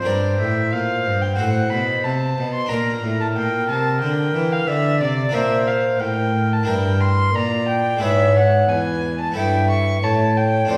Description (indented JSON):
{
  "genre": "classical, baroque-style sonata movement with continuo",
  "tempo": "90 BPM",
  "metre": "4/4",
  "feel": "rubato",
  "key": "unclear",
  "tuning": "A4 = 440 Hz",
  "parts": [
    { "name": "dark violin", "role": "melody", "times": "0.0-10.8 s", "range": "C5 to C#6", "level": "-25 LUFS", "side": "equal", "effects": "none" },
    { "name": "bright baroque flute", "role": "second line", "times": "0.0-10.8 s", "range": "Bb4 to E5", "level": "-25 LUFS", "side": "equal", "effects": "none" },
    { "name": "harpsichord", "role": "accompaniment", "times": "0.0-10.8 s", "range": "E2 to C5", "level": "-28 LUFS", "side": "equal", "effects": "none" },
    { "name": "dark cello", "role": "bass", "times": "0.0-10.8 s", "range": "E2 to E3", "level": "-24 LUFS", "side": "equal", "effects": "none" }
  ],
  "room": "wet recital hall reverb, RT60 1.4 s",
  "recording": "recorded in a church or concert hall",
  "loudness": "-19 LUFS",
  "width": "mono",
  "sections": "0.0-10.8 A section",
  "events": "none",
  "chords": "0.1 Gm; 1.4 F#dim/A; 2.7 Gm; 5.3 Bb; 6.7 Em7b5/G; 8.0 E7/G#; 9.4 A7/G",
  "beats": "| 0.06 0.73 1.39 2.05 | 2.71 3.37 4.02 4.68 | 5.34 6.00 6.68 7.35 | 8.02 8.69 9.36 10.03 | 10.70"
}